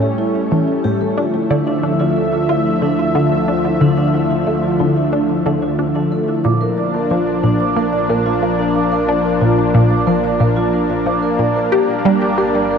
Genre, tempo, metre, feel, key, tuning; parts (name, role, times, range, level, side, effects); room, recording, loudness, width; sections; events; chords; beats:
ambient; 91 BPM; 4/4; straight; D harmonic minor; A4 = 440 Hz
lush unison pad; sustained chords; 0.0-12.8 s; D3 to E5; -17 LUFS; left 1 dB; chorus, shimmer reverb
vibraphone with soft mallets; arpeggios; 0.0-12.8 s; C#4 to D6; -20 LUFS; moving between left 1 dB and right 6 dB; auto-pan, tape echo, shimmer reverb
analog pluck; riff; 0.0-12.7 s; A2 to G4; -19 LUFS; equal; chorus, phaser, tape echo
fat analog bass; bass; 0.0-12.8 s; G1 to D2; -36 LUFS; equal; tube saturation
wet huge ambient reverb, RT60 8.3 s; -14 LUFS; side -6 dB against mid
0.0-12.8 A section
fade-in on analog synth bass 0.0-12.8
0.0 A7; 1.2 Dmadd9; 6.4 Bb; 11.7 Gm
0.51 | 1.17 1.83 2.49 3.15 | 3.81 4.47 5.13 5.79 | 6.45 7.11 7.77 8.43 | 9.09 9.74 10.40 11.06 | 11.72 12.38